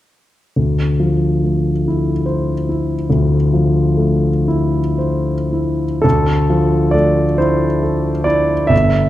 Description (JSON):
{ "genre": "classical, impressionist solo piano", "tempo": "36-49 BPM (dotted quarters)", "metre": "6/8", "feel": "rubato", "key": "D minor", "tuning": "A4 = 438 Hz", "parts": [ { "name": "warm concert grand piano", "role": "solo", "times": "0.6-9.1 s", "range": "G1 to E5", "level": "-13 LUFS", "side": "equal", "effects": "none" } ], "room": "wet recital hall reverb, RT60 1.3 s", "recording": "dark, warm production", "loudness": "-14 LUFS", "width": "side -14 dB against mid", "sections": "0.6-6.0 A section; 6.0-9.1 B section", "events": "none", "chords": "0.6 Dm9" }